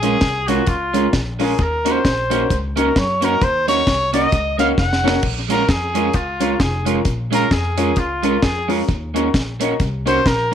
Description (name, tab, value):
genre	ska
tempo	132 BPM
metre	4/4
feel	swing 58% on 8ths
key	Bb minor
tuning	A4 = 441 Hz
part	warm trumpet	melody	0.0-10.5 s	F4 to Gb5	-20 LUFS	equal	none
part	electric guitar at the edge of break-up	accompaniment	0.0-10.5 s	Ab3 to Gb4	-22 LUFS	right 9 dB	analog chorus, tape echo
part	warm upright piano	stabs	0.0-10.5 s	Db4 to Bb4	-24 LUFS	left 8 dB	tape echo
part	upright bass	bass	0.0-10.5 s	F1 to Gb2	-24 LUFS	left 1 dB	none
part	deep reggae drum kit	drums	0.0-10.4 s	crash cymbal, hi-hat, kick drum, snare drum	-21 LUFS	equal	tape echo
room	moderate spring reverb, RT60 1.0 s, small room reverb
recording	1960s-style stereo with parts hard left and right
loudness	-16 LUFS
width	side -9 dB against mid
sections	0.0-5.2 A section; 5.2-10.5 A section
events	trumpet solo 0.0-5.2, 5.2-10.5; drum fill 4.8-5.2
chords	0.0 Bbm7; 1.6 Ebm7; 5.2 Bbm7; 8.9 Ebm7